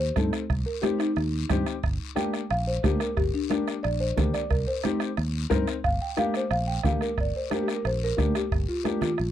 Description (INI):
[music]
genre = latin, cumbia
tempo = 180 BPM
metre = 4/4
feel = straight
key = G minor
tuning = A4 = 440 Hz
[part]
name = buzzing marimba with soft mallets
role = melody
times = 0.0-9.3 s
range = D4 to G5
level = -29 LUFS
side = left 1 dB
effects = none
[part]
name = fingered electric bass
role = bass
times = 0.0-9.3 s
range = G1 to G2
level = -28 LUFS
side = equal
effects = none
[part]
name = dark upright piano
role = accompaniment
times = 0.2-9.1 s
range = Bb3 to Bb4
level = -30 LUFS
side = left 8 dB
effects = none
[part]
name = bombo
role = percussion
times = 0.2-9.3 s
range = none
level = -29 LUFS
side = right 2 dB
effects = none
[part]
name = congas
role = percussion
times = 0.2-9.2 s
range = none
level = -32 LUFS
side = right 6 dB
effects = none
[part]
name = guiro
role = percussion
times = 0.2-9.3 s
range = none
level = -41 LUFS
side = left 16 dB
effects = none
[sound]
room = light reverb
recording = dry, close 1970s-style studio recording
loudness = -24 LUFS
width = side -11 dB against mid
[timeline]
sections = 0.0-7.2 A section; 7.2-9.3 B section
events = marimba solo 0.0-7.2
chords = 0.0 Cm; 1.8 Gm; 4.5 Cm; 5.8 Gm